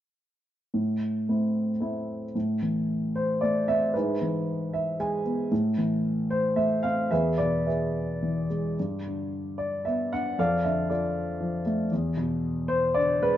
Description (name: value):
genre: classical, lyrical solo piano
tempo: 107-120 BPM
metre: 3/4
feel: rubato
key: A harmonic minor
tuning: A4 = 437 Hz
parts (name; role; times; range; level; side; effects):
- dark baby grand piano; solo; 0.7-13.4 s; E2 to G#5; -24 LUFS; equal; none
room: wet spring reverb, RT60 1.3 s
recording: heard from further back in the room, nothing above 7.6 kHz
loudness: -25 LUFS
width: side -12 dB against mid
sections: 0.7-2.3 A section; 2.3-13.4 B section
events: grand piano fill 4.5-5.5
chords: 0.7 Am; 3.9 E/G#; 5.5 Am; 7.1 E; 8.8 G; 10.4 Dm/F; 11.9 E7(no3)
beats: | 0.74 1.28 1.81 | 2.35 2.89 3.42 | 3.94 4.46 4.98 | 5.51 6.03 6.56 | 7.11 7.66 8.21 | 8.77 9.32 9.86 | 10.38 10.89 11.40 | 11.90 12.43 12.96